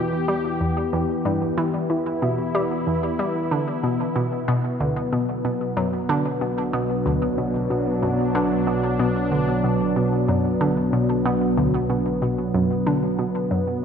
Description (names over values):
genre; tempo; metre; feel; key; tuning
ambient, sequencer-driven space music; 93 BPM; 4/4; straight; unclear; A4 = 439 Hz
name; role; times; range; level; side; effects
sweeping resonant pad; sustained chords; 0.0-13.8 s; B2 to G4; -22 LUFS; equal; chorus
analog pluck; riff; 0.0-13.7 s; D2 to G3; -24 LUFS; equal; chorus, cassette tape, tape echo
fat analog bass; bass; 0.0-13.8 s; E2; -40 LUFS; equal; none
room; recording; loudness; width
wet concert hall reverb, RT60 2.2 s; none; -20 LUFS; side -7 dB against mid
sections
0.0-13.8 A section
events
fade-in on analog synth bass 0.0-13.8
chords
0.0 Em; 4.2 Bm